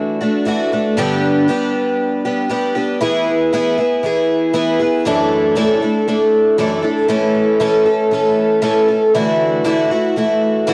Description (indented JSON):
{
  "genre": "rock",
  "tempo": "118 BPM",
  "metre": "4/4",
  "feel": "straight",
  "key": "unclear",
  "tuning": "A4 = 436 Hz",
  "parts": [
    { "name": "picked twelve-string acoustic guitar", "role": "solo", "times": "0.0-10.7 s", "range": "F#2 to A4", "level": "-16 LUFS", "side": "equal", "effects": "cassette tape, tape echo" }
  ],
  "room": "light reverb",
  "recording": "home recording on cassette",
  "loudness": "-16 LUFS",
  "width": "mono",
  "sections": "0.0-3.0 A section; 3.0-10.7 B section",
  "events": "none",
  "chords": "0.0 Dadd9; 1.0 G; 3.0 E; 5.1 Dadd9/F#; 7.1 A/E; 9.1 Dadd9"
}